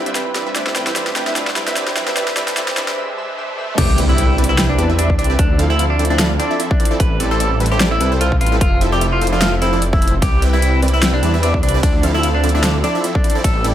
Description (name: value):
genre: future bass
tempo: 149 BPM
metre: 4/4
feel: swing 55% on 16ths, half-time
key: unclear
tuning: A4 = 440 Hz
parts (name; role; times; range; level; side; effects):
- glassy digital keys; accompaniment; 0.0-3.8 s; D4 to E5; -24 LUFS; right 1 dB; chorus, sidechain pumping, tape echo
- muted symphonic string section; sustained chords; 0.0-3.0 s; D3 to E5; -34 LUFS; equal; none
- supersaw stab; riff; 0.0-13.7 s; F3 to G5; -21 LUFS; right 1 dB; sidechain pumping
- riser and impact; sound effects; 0.0-5.4 s; none; -25 LUFS; equal; none
- big-room dance drum kit; drums; 0.1-13.7 s; crash cymbal, hi-hat, ride cymbal, snare drum; -21 LUFS; equal; overdrive, high-pass filter on snare, high-pass filter on hats, high-pass filter on cymbals
- wide detuned saw bass; bass; 0.6-13.7 s; F1 to E2; -18 LUFS; equal; chorus, sidechain pumping
- clean electric guitar; melody; 3.8-13.7 s; D4 to B4; -21 LUFS; equal; phaser, sidechain pumping, tape echo
- electronic kick drum; drums; 3.8-13.5 s; none; -16 LUFS; equal; overdrive
room: light reverb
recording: high-pass filter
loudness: -14 LUFS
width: side -11 dB against mid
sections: 0.0-3.8 A section; 3.8-13.7 B section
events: build-up 0.0-3.8; drum fill 0.0-3.0; riser 0.0-3.8; break 3.0-3.8; drop 3.8-13.7; impact 3.8-5.4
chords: 0.0 Dm9; 0.6 Am9; 2.2 Fmaj7; 3.8 Cmaj9; 5.4 Dm9; 7.0 Am9; 8.6 Fmaj7; 10.2 Cmaj9; 11.8 Dm9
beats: 0.15 | 0.56 0.96 1.36 1.76 | 2.17 2.57 2.97 3.38 | 3.78 4.18 4.58 4.99 | 5.39 5.79 6.20 6.60 | 7.00 7.40 7.80 8.21 | 8.61 9.01 9.42 9.82 | 10.22 10.62 11.03 11.43 | 11.83 12.23 12.64 13.04 | 13.44